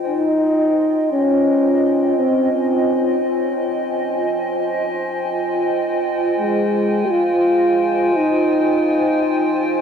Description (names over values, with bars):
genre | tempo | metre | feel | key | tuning
ambient | free time | none | none | F minor | A4 = 440 Hz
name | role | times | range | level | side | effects
warbly tape-like pad | sustained chords | 0.0-9.8 s | F4 to Ab5 | -20 LUFS | right 1 dB | chorus, built-in reverb
trombone with bucket mute | melody | 0.1-9.8 s | Ab3 to G4 | -18 LUFS | equal | dub echo
room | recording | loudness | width
wet lush hall reverb, RT60 1.8 s, small room ambience | none | -16 LUFS | side -7 dB against mid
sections
0.1-9.8 A section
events
none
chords
0.1 Fm7